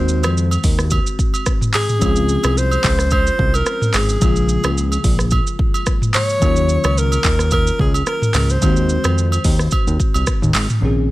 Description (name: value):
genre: afrobeats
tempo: 109 BPM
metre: 4/4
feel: swing 55% on 16ths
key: unclear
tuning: A4 = 440 Hz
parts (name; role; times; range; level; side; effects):
- breathy alto saxophone; melody; 0.0-9.3 s; Ab4 to Db5; -22 LUFS; equal; digital delay
- bell-like FM electric piano; accompaniment; 0.0-11.1 s; C3 to Ab4; -24 LUFS; left 3 dB; chorus
- fat analog bass; bass; 0.0-11.1 s; Ab1 to F2; -18 LUFS; equal; none
- afro-pop drum kit; drums; 0.1-10.8 s; handclaps, hi-hat, kick drum, rim click, shaker, toms; -18 LUFS; equal; none
- agogo bells; percussion; 0.2-10.7 s; none; -27 LUFS; right 6 dB; none
room: little or no reverb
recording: none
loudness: -14 LUFS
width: side -17 dB against mid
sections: 0.0-10.8 A section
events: hi-hats muted 10.8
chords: 0.0 Ab7/Eb; 2.0 Dbmaj7; 4.2 Bbm7; 6.4 Ebm9; 8.6 Ab7/Eb